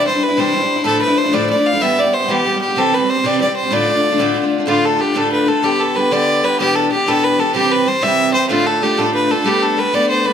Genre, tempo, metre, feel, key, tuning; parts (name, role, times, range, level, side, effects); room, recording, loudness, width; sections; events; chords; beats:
celtic folk; 125 BPM (dotted quarters); 6/8; straight; D dorian; A4 = 440 Hz
clear fiddle; melody; 0.0-10.3 s; F4 to F5; -16 LUFS; equal
picked steel-string acoustic guitar; accompaniment; 0.0-10.3 s; D2 to G4; -17 LUFS; equal
moderate recital hall reverb, RT60 1.4 s; close, detailed microphones; -13 LUFS; side -8 dB against mid
0.0-4.7 A section; 4.7-10.3 B section
0.0 Cadd9; 0.9 Dmadd9; 1.8 Em; 2.8 C; 3.7 Dm; 5.6 G/D; 6.6 Em7; 7.5 C; 8.5 Dm; 9.5 Gadd9
0.38 | 0.85 1.33 | 1.81 2.29 | 2.77 3.24 | 3.72 4.20 | 4.68 5.16 | 5.63 6.11 | 6.59 7.07 | 7.55 8.03 | 8.51 8.98 | 9.46 9.94